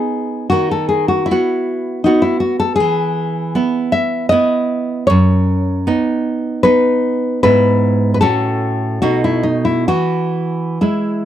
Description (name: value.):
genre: romantic duo for nylon-string guitar and classical guitar.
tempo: 64-81 BPM.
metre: 3/4.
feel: rubato.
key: E major.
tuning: A4 = 442 Hz.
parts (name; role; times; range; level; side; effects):
nylon-string guitar; melody; 0.0-11.2 s; D#4 to E5; -16 LUFS; left 2 dB; none.
nylon-string guitar; accompaniment; 0.0-11.2 s; F#2 to F#4; -16 LUFS; right 2 dB; none.
room: little or no reverb.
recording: dry, close 1970s-style studio recording.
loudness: -13 LUFS.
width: side -11 dB against mid.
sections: 0.0-11.2 A section.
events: none.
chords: 0.0 B; 0.5 B/D#; 2.8 E; 5.1 B/F#; 7.4 E/G#; 8.2 F#m/A; 9.0 B7; 9.9 E.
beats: | 0.51 1.29 2.04 | 2.79 3.54 4.31 | 5.09 5.86 6.64 | 7.44 8.22 9.02 | 9.88 10.81.